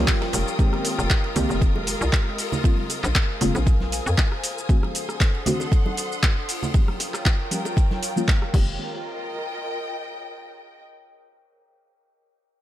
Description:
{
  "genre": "deep house",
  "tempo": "117 BPM",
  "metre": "4/4",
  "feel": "swing 54% on 16ths",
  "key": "F minor",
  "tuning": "A4 = 440 Hz",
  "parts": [
    { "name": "folk marimba with medium mallets", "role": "melody", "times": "0.0-0.5 s", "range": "G4", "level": "-42 LUFS", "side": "equal", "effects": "none" },
    { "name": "warbly tape-like pad", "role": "sustained chords", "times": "0.2-8.8 s", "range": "Ab3 to Eb6", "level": "-35 LUFS", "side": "equal", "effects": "chorus, built-in reverb, sidechain pumping" },
    { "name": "deep mellow chord stab", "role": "stabs", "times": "0.0-8.7 s", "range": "Db3 to G4", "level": "-28 LUFS", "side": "equal", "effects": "chorus, sidechain pumping, dub echo" },
    { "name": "hollow knocking FM bass", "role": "bass", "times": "0.0-4.2, 8.5-8.8 s", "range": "F1 to F2", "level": "-25 LUFS", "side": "equal", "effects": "tube saturation, sidechain pumping" },
    { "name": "warm symphonic string section", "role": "texture", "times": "0.0-10.8 s", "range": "F4 to Eb6", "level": "-32 LUFS", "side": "left 2 dB", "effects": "sidechain pumping" },
    { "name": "deep house drum kit", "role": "drums", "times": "0.1-8.7 s", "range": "crash cymbal, handclaps, hi-hat, ride cymbal, rim click, shaker", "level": "-27 LUFS", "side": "equal", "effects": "none" },
    { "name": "electronic kick drum", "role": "drums", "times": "0.1-8.6 s", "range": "none", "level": "-20 LUFS", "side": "equal", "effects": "none" },
    { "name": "modern studio drum kit", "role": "drums", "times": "0.1-8.4 s", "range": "hi-hat, ride cymbal, snare drum", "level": "-38 LUFS", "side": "right 2 dB", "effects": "high-pass filter on cymbals, high-pass filter on hats, high-pass filter on snare, high-pass filter on room" },
    { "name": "congas and bongos", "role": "percussion", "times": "0.7-8.0 s", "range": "none", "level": "-32 LUFS", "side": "right 2 dB", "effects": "sidechain pumping on perc" }
  ],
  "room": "light reverb, small room reverb",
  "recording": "none",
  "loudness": "-20 LUFS",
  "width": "side -13 dB against mid",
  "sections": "0.6-8.8 A section; 8.8-10.8 B section",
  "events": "filter sweep on synth stab 0.6-8.8",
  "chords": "0.0 Gm7b5; 0.6 Fm11; 2.4 Bbm9; 4.7 D7b9; 6.5 Gm7b5; 8.5 Fm11; 8.8 F9sus4"
}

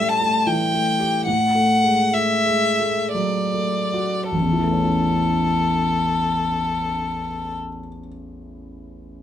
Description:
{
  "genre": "classical, romantic duo for violin and grand piano",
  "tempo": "47-80 BPM",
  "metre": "3/4",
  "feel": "rubato",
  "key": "A major",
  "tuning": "A4 = 443 Hz",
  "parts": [
    { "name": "rich violin", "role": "melody", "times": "0.0-7.6 s", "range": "A4 to A5", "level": "-20 LUFS", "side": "left 2 dB", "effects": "none" },
    { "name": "warm concert grand piano", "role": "accompaniment", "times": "0.0-9.2 s", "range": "A1 to G4", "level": "-22 LUFS", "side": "equal", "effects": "none" }
  ],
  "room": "light reverb",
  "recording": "minimal, uncompressed stereo recording",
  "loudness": "-18 LUFS",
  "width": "side -10 dB against mid",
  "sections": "0.0-4.3 A section; 4.3-9.2 B section",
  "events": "slowing down 0.0-4.3",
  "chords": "0.0 A5; 1.3 D/A; 4.3 A"
}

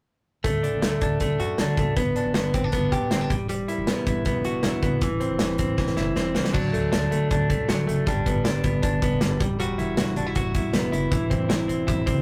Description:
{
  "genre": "jangly indie pop",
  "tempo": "157 BPM",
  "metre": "4/4",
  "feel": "straight",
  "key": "unclear",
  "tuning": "A4 = 440 Hz",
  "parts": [
    { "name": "direct-recorded clean electric guitar", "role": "arpeggios", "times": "0.4-12.2 s", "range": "E3 to G4", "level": "-28 LUFS", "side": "equal", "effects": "none" },
    { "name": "upright bass", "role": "bass", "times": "0.4-12.2 s", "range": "E1 to F#2", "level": "-30 LUFS", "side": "equal", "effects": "none" },
    { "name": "modern studio drum kit", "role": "drums", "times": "0.4-12.2 s", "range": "crash cymbal, hi-hat, kick drum, snare drum", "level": "-28 LUFS", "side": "equal", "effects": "none" }
  ],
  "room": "wet booth ambience, RT60 0.2 s",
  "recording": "rough rehearsal-room recording, tube saturation",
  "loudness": "-24 LUFS",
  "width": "mono",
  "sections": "0.4-6.5 A section; 6.5-12.2 B section",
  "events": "drum fill 5.8-6.5",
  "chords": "0.4 D; 2.0 G; 3.3 Emadd9; 5.0 C/E; 6.5 D; 8.1 G; 9.4 Emadd9; 11.1 C/E"
}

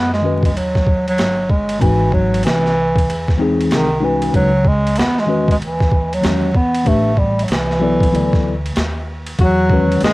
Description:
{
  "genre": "hip hop, jazz-hop",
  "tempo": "95 BPM",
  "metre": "4/4",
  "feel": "swing 65% on 16ths",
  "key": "E major",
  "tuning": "A4 = 440 Hz",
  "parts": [
    { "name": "clear bass clarinet", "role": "melody", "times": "0.0-10.1 s", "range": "D#3 to B3", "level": "-17 LUFS", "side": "right 1 dB", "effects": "cassette tape" },
    { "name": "upright bass", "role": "bass", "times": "0.0-10.1 s", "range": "G1 to F#2", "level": "-21 LUFS", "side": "equal", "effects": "tube saturation" },
    { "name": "boom bap sampler-style drum kit", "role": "drums", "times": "0.1-10.1 s", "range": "hi-hat, kick drum, ride cymbal, snare drum", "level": "-19 LUFS", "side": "equal", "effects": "cassette tape" },
    { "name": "tine electric piano", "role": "accompaniment", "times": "0.2-10.1 s", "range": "D#3 to D5", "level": "-18 LUFS", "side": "left 3 dB", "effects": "medium stereo tremolo, cassette tape" },
    { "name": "breathy tenor saxophone", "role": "second line", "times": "9.4-10.1 s", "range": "F#4 to G#4", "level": "-20 LUFS", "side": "left 4 dB", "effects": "cassette tape" }
  ],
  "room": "moderate booth ambience, RT60 0.2 s",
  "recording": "home recording on cassette, vinyl crackle",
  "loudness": "-13 LUFS",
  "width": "side -20 dB against mid",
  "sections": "0.0-9.4 A section",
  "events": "none",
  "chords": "0.0 Emaj9 (rootless); 1.8 G#7b13; 4.3 C#m11; 6.9 Am7; 8.1 Dadd9; 9.4 Emaj9"
}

